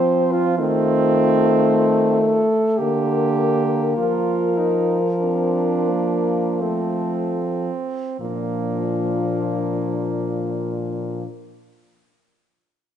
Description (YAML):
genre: classical, lyrical piece for horn quartet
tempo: 36-56 BPM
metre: 3/4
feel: rubato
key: Bb major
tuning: A4 = 440 Hz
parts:
  - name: warm French horn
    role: melody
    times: 0.0-11.3 s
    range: D4 to C5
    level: -26 LUFS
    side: left 5 dB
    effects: none
  - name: clear French horn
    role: second line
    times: 0.0-11.3 s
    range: Bb3 to C5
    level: -24 LUFS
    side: right 7 dB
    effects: none
  - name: mellow French horn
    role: accompaniment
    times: 0.0-11.3 s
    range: F3 to C4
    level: -22 LUFS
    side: left 3 dB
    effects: none
  - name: warm French horn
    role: bass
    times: 0.0-11.2 s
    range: Bb2 to F3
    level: -24 LUFS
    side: right 1 dB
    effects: none
room: moderate scoring stage reverb, RT60 1.6 s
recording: nothing above 10.5 kHz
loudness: -18 LUFS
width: side -9 dB against mid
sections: 0.0-8.2 A section; 8.2-12.7 B section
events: slowing down 0.0-8.2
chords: 0.0 F5; 0.6 F7/Eb; 2.8 Bb/D; 4.0 Bb/F; 6.6 F; 8.2 Bb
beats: | 0.59 1.68 2.80 | 3.98 5.22 6.61 | 8.21 9.72 11.21